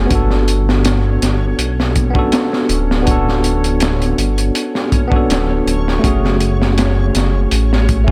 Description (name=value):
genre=trip hop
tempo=81 BPM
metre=4/4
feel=straight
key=unclear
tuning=A4 = 440 Hz
part: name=tine electric piano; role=accompaniment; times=0.0-8.1 s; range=A3 to A4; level=-20 LUFS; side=equal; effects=harmonic tremolo, tape echo
part: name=dark detuned saw bass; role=bass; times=0.0-8.1 s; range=D1 to B1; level=-18 LUFS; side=equal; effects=tube saturation
part: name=backwards swelling texture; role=texture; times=0.0-8.1 s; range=C#4 to C#5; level=-31 LUFS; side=equal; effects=built-in reverb
part: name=crunchy breakbeat drum kit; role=drums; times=0.1-8.1 s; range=hi-hat, kick drum, snare drum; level=-20 LUFS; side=equal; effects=none
room=small room ambience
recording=none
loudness=-15 LUFS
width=mono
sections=0.0-8.1 A section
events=none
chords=0.1 Gmaj7; 6.0 F#madd9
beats=| 0.10 0.84 1.58 2.32 | 3.06 3.81 4.55 5.29 | 6.03 6.77 7.51